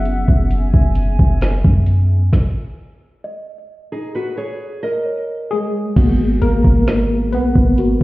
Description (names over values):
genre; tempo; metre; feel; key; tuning
contemporary R&B; 66 BPM; 4/4; straight; G# minor; A4 = 442 Hz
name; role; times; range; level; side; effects
tine electric piano; accompaniment; 0.0-8.0 s; F#3 to B4; -18 LUFS; equal; overdrive, fast stereo tremolo
hollow soft pad; sustained chords; 0.0-2.3 s; G#4 to G#5; -29 LUFS; left 1 dB; chorus
clean 808-style bass; bass; 0.0-8.0 s; F#1 to F#2; -16 LUFS; equal; none
smooth R&B drum kit; drums; 0.1-8.0 s; crash cymbal, hi-hat, kick drum, snare drum; -14 LUFS; equal; none
small celesta; texture; 3.2-8.0 s; F#4 to D#5; -31 LUFS; left 2 dB; digital delay
nylon-string guitar; arpeggios; 3.9-5.9 s; D#4 to D#5; -23 LUFS; right 1 dB; digital delay
room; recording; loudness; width
digital ambience; heard muffled through a wall, stone room reverb, EQ; -13 LUFS; side -19 dB against mid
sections
0.0-6.0 A section; 6.0-8.0 A section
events
stop 2.3-6.0; tine electric piano solo 6.0-8.0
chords
0.0 F#9sus4; 2.3 C#sus2; 6.0 G#m7